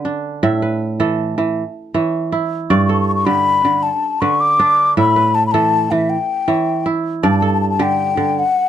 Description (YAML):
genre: west african traditional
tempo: 106 BPM (dotted quarters)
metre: 12/8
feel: straight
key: G lydian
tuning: A4 = 440 Hz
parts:
  - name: kora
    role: arpeggios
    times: 0.0-8.7 s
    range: G2 to E5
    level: -17 LUFS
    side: right 3 dB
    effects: none
  - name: mellow hollow concert flute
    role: melody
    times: 2.7-8.7 s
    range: E5 to D6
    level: -15 LUFS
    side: left 4 dB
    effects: none
room: light reverb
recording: dark, warm production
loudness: -14 LUFS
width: side -10 dB against mid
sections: 0.0-8.7 A section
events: none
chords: 0.4 A5; 1.6 C#m; 2.7 G; 3.8 D5; 5.0 A5; 6.1 Em; 7.2 G5